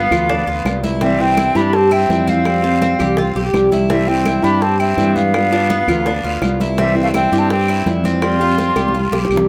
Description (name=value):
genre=latin, Cuban son and guajira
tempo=166 BPM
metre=4/4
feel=straight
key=C major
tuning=A4 = 439 Hz
part: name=hollow concert flute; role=melody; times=0.0-9.3 s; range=E5 to C6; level=-21 LUFS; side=equal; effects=plate reverb
part: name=bright trumpet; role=second line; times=0.0-9.3 s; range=G3 to F4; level=-28 LUFS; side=equal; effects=none
part: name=nylon-string guitar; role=accompaniment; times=0.0-9.5 s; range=C3 to G4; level=-23 LUFS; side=equal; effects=none
part: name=Cuban tres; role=arpeggios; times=0.0-9.5 s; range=B3 to G4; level=-23 LUFS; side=equal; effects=none
part: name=fretless electric bass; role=bass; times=0.0-9.5 s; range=B1 to G2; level=-22 LUFS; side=equal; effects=none
part: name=bongos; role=percussion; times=0.1-9.5 s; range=none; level=-28 LUFS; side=equal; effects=none
part: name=claves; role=percussion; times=0.1-9.5 s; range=none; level=-31 LUFS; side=equal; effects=none
part: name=congas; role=percussion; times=0.1-9.4 s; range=none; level=-27 LUFS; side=equal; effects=none
part: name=guiro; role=percussion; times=0.1-9.5 s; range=none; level=-36 LUFS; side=equal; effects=none
room=moderate small room reverb, RT60 0.6 s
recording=none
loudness=-16 LUFS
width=mono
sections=0.0-9.5 A section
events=drum fill 8.8-9.5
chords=0.0 G7; 1.0 C; 2.5 Fsus2; 3.9 C; 5.3 G7; 6.8 C; 8.2 Fsus2